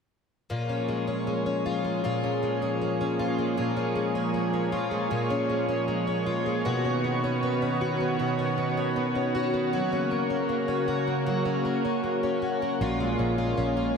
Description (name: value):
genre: dream pop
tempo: 78 BPM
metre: 4/4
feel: straight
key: Bb minor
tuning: A4 = 441 Hz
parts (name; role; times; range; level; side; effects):
- lush unison pad; sustained chords; 0.5-14.0 s; Db3 to Db5; -28 LUFS; right 2 dB; chorus, shimmer reverb
- fingerpicked plugged-in twelve-string acoustic guitar; arpeggios; 0.5-14.0 s; Bb2 to F#4; -27 LUFS; left 2 dB; lush chorus, analog delay, shimmer reverb
- vintage muted fingered electric bass; bass; 12.8-13.9 s; Bb1; -31 LUFS; right 1 dB; none
room: wet lush hall reverb, RT60 2.7 s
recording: dreamy mix soaked in reverb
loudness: -25 LUFS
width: side -6 dB against mid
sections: 0.5-12.8 A section; 12.8-14.0 B section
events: none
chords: 0.5 Bbm7; 6.7 Badd9; 9.7 Gb; 12.8 Bbm7